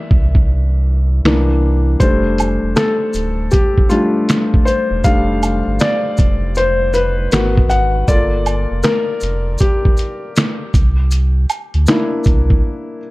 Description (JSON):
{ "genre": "lo-fi hip hop", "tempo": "79 BPM", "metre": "4/4", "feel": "swing 65% on 16ths", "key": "unclear", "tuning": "A4 = 440 Hz", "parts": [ { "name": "felt-muted upright piano", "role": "accompaniment", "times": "0.0-13.1 s", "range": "E3 to Gb5", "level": "-17 LUFS", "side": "left 2 dB", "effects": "cassette tape, low-pass filter" }, { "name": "sub bass with octave", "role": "bass", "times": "0.1-12.6 s", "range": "D1 to D2", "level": "-16 LUFS", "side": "equal", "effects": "none" }, { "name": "trip hop sampler-style drum kit", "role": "drums", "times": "0.1-12.6 s", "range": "finger snaps, hi-hat, kick drum, snare drum", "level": "-14 LUFS", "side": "equal", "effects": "vintage 12-bit sampler grit" }, { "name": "maracas and woodblock", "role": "percussion", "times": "2.0-12.5 s", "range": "none", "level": "-25 LUFS", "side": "right 4 dB", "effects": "none" } ], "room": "little or no reverb", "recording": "dark, warm production", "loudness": "-13 LUFS", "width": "side -20 dB against mid", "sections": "0.0-13.1 A section", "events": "break 0.0-2.0, 12.6-13.1; felt piano solo 0.0-13.1; kick muted 0.5-2.0", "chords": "0.0 C7; 2.0 F6; 7.3 Abm7; 8.1 Gm7; 10.7 C7" }